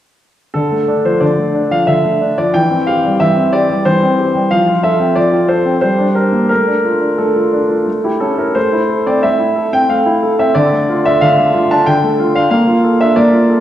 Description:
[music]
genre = classical-period piano sonatina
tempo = 91 BPM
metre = 3/4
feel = rubato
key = D minor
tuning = A4 = 440 Hz
[part]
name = clear baby grand piano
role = solo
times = 0.5-13.6 s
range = D3 to A5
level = -11 LUFS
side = equal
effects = none
[sound]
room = wet recital hall reverb, RT60 1.4 s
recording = heard from further back in the room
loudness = -11 LUFS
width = side -12 dB against mid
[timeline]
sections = 0.5-13.6 A section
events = none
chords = 0.5 Dm; 2.5 C/E; 4.5 F; 5.8 Gm; 6.5 Dm/A; 7.9 A; 8.6 Am; 10.6 Dm; 12.5 Bbmaj7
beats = | 0.55 1.22 1.88 | 2.55 3.21 3.87 | 4.52 5.17 5.83 | 6.50 7.19 7.87 | 8.56 9.23 9.89 | 10.55 11.21 11.87 | 12.51 13.16

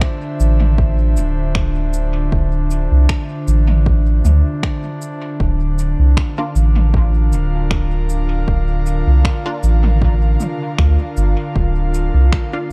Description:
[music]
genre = ambient dub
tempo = 78 BPM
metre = 4/4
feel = swing 53% on 16ths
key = unclear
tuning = A4 = 440 Hz
[part]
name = airy breathy pad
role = sustained chords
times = 0.0-12.7 s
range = D3 to F5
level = -26 LUFS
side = equal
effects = chorus
[part]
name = electronic kick drum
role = drums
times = 0.0-12.5 s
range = none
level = -22 LUFS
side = equal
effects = overdrive
[part]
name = organic electronic drum kit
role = drums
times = 0.0-12.5 s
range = cabasa, finger snaps, toms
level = -29 LUFS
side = equal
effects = overdrive, dub echo
[part]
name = soft dub sub bass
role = bass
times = 0.4-12.3 s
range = D1 to D2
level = -16 LUFS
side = equal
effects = none
[part]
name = filtered dub chord stab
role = stabs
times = 6.4-12.7 s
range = Bb3 to F4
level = -30 LUFS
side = equal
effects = phaser, ensemble chorus, dub echo
[sound]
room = little or no reverb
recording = dark, warm production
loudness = -16 LUFS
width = mono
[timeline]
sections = 0.0-12.7 A section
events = none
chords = 0.0 Dm7; 5.4 Bb/D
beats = 0.02 0.79 1.55 | 2.32 3.09 3.86 4.63 | 5.40 6.17 6.94 7.71 | 8.48 9.25 10.02 10.79 | 11.55 12.32

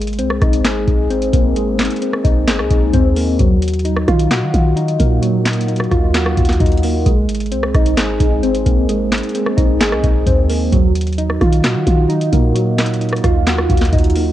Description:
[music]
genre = hip hop, trap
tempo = 131 BPM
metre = 4/4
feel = half-time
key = Eb dorian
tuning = A4 = 442 Hz
[part]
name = soft electric-piano-like synth keys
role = accompaniment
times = 0.0-14.3 s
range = Gb3 to Ab4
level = -17 LUFS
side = equal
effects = chorus, phaser, low-pass filter
[part]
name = clean 808-style bass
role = bass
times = 0.0-14.3 s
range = Ab1 to Eb3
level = -18 LUFS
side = equal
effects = none
[part]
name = booming analog drum machine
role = drums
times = 0.0-14.3 s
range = handclaps, hi-hat, kick drum, rim click, snare drum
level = -16 LUFS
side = equal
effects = cassette tape
[sound]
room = digital ambience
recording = home recording on cassette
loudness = -13 LUFS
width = side -13 dB against mid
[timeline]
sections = 0.0-14.3 A section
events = none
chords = 0.0 Abadd9; 3.4 Ebmadd9; 7.1 Abadd9; 10.7 Ebmadd9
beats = 0.19 0.65 1.10 | 1.56 2.02 2.48 2.94 | 3.39 3.85 4.31 4.77 | 5.23 5.68 6.14 6.60 | 7.06 7.52 7.97 8.43 | 8.89 9.35 9.81 10.27 | 10.72 11.18 11.64 12.10 | 12.55 13.01 13.47 13.93

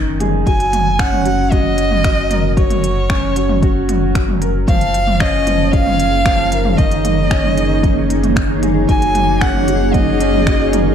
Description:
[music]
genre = piano and strings electronica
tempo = 114 BPM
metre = 4/4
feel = straight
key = F# major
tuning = A4 = 440 Hz
[part]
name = clear upright piano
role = riff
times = 0.0-10.9 s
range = D#3 to A#4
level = -19 LUFS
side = right 1 dB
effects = analog chorus, tape echo
[part]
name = warm sub bass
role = bass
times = 0.0-10.9 s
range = F#1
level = -20 LUFS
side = equal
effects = sidechain pumping
[part]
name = organic electronic drum kit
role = drums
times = 0.2-10.8 s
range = finger snaps, hi-hat, toms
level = -21 LUFS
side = right 1 dB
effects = overdrive
[part]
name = warm violin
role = melody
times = 0.5-10.9 s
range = C#5 to G#5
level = -19 LUFS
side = equal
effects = tape echo
[part]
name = electronic kick drum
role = drums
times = 0.5-10.6 s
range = none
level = -17 LUFS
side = equal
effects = overdrive
[part]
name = granular cloud pad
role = sustained chords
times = 5.7-10.9 s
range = A#3 to C#5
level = -20 LUFS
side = equal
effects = built-in reverb, sidechain pumping
[sound]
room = moderate plate reverb, RT60 1.1 s, digital ambience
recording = dreamy mix soaked in reverb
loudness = -12 LUFS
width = side -8 dB against mid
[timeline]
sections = 0.0-10.9 A section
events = none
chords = 0.5 F#; 4.7 A#m/F#; 6.8 C#sus2/F#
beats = | 0.47 0.99 1.52 2.05 | 2.57 3.10 3.62 4.15 | 4.68 5.20 5.73 6.26 | 6.78 7.31 7.84 8.36 | 8.89 9.41 9.94 10.47

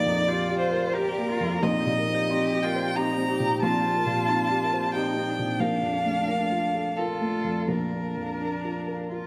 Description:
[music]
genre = neoclassical piano and strings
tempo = 89 BPM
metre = 3/4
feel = uneven beats, rubato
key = Bb major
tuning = A4 = 440 Hz
[part]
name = rich violin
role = melody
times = 0.0-9.3 s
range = A4 to Bb5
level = -30 LUFS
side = equal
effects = none
[part]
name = warm cello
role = second line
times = 0.0-9.3 s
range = D4 to G4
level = -34 LUFS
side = equal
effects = none
[part]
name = dark upright piano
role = accompaniment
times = 0.0-9.3 s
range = Bb1 to C5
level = -31 LUFS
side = equal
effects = none
[part]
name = marimba with medium hard mallets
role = arpeggios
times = 0.0-9.2 s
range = C4 to A5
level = -36 LUFS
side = equal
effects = tape echo
[sound]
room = moderate concert hall reverb, RT60 1.8 s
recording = none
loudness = -26 LUFS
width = mono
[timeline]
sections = 0.0-9.3 A section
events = none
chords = 0.0 Gm7/Bb; 1.6 Cm7/Bb; 5.6 Bbmaj7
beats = 0.27 0.94 | 1.62 2.29 2.96 | 3.62 4.29 4.95 | 5.61 6.28 6.97 | 7.68 8.39 9.11

